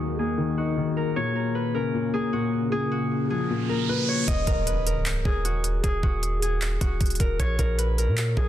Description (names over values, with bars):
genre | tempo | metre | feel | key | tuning
hip hop, trap | 154 BPM | 4/4 | half-time | Eb minor | A4 = 439 Hz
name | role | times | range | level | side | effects
Celtic harp | melody | 0.0-8.5 s | Gb4 to Eb5 | -29 LUFS | left 1 dB | low-pass filter, ping-pong delay
dark concert grand piano | accompaniment | 0.0-4.3 s | Bb2 to Eb4 | -26 LUFS | left 3 dB | low-pass filter
deep dark ambient pad | sustained chords | 0.0-4.2 s | Eb2 to Bb4 | -32 LUFS | right 1 dB | chorus, built-in reverb, low-pass filter
downlifter, riser and impact | sound effects | 0.0-5.8 s | none | -33 LUFS | right 3 dB | none
long sustained 808-style bass | bass | 4.3-8.5 s | Db1 to Bb2 | -26 LUFS | equal | none
trap drum kit | drums | 4.3-8.5 s | handclaps, hi-hat, kick drum | -26 LUFS | equal | none
room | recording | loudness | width
light reverb | dense, heavily limited modern master | -23 LUFS | side -12 dB against mid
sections
0.0-4.3 A section; 4.3-8.5 B section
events
filter sweep 0.0-4.3; riser 3.3-4.3; impact 4.3-5.8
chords
0.0 Ebm; 1.2 Bbm; 4.3 Ebm; 7.4 Bbm7